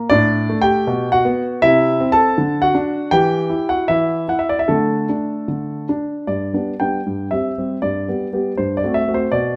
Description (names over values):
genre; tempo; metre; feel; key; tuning
classical-period piano sonatina; 79 BPM; 2/4; rubato; G major; A4 = 440 Hz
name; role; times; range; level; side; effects
warm concert grand piano; solo; 0.0-9.6 s; G2 to A5; -18 LUFS; equal; none
room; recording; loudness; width
light reverb; none; -18 LUFS; mono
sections
0.0-6.3 A section; 6.3-9.6 B section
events
none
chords
0.1 D5/A; 0.9 G/B; 1.6 Am/C; 2.4 D; 3.1 Em; 4.7 D5; 6.3 G; 7.1 C/G; 7.8 G; 8.6 F#dim/G